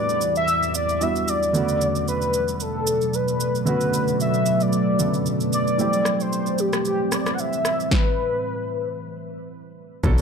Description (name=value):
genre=amapiano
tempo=113 BPM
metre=4/4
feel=swing 55% on 16ths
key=B phrygian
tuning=A4 = 440 Hz
part: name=warm velvety synth lead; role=melody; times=0.0-9.5 s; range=G4 to F#5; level=-23 LUFS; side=left 2 dB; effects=chorus, ping-pong delay
part: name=warm baby grand piano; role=accompaniment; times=0.0-10.2 s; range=C#3 to A4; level=-27 LUFS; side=right 4 dB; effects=none
part: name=deep dark ambient pad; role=sustained chords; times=0.0-7.9 s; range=E2 to D5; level=-25 LUFS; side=right 1 dB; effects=chorus, built-in reverb, sidechain pumping
part: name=deep house drum kit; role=drums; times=0.1-10.2 s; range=kick drum, rim click, shaker, snare drum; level=-26 LUFS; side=equal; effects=none
part: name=woody log drum bass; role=bass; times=10.0-10.2 s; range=B1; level=-19 LUFS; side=left 1 dB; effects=none
part: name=congas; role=percussion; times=10.0-10.2 s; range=none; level=-26 LUFS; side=left 1 dB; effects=none
room=light reverb, digital ambience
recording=dark, warm production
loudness=-20 LUFS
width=side -6 dB against mid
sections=0.0-10.0 A section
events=stop 7.9-10.0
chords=0.0 Em9; 1.5 Bm9; 5.8 Am7; 7.9 N.C.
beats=0.48 1.01 | 1.54 2.07 2.60 3.13 | 3.67 4.20 4.73 5.26 | 5.79 6.32 6.85 7.38 | 7.91 8.44 8.97 9.51 | 10.04